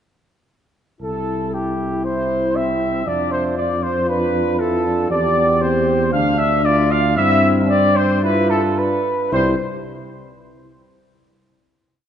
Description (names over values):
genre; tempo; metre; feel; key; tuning
classical, brass quintet; 106-119 BPM; 4/4; straight; C major; A4 = 440 Hz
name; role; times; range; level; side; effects
mellow trumpet; melody; 1.0-9.6 s; G4 to F5; -22 LUFS; left 6 dB; none
warm flugelhorn; second line; 1.0-9.6 s; G4 to F5; -21 LUFS; right 4 dB; none
warm French horn; accompaniment; 1.0-9.5 s; C4 to G4; -23 LUFS; left 3 dB; none
dark tuba; bass; 1.0-9.5 s; C2 to G2; -22 LUFS; right 1 dB; none
bright trombone; accompaniment; 2.0-9.5 s; G3 to F4; -26 LUFS; right 1 dB; none
room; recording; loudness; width
wet concert hall reverb, RT60 2.4 s; dark, warm production, nothing above 10.8 kHz; -16 LUFS; side -9 dB against mid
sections
1.0-9.3 A section; 9.3-11.5 final chord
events
none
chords
1.0 C; 3.1 Dm/F; 5.1 C/E; 6.1 Dm; 7.2 C/G; 8.2 G7; 9.3 C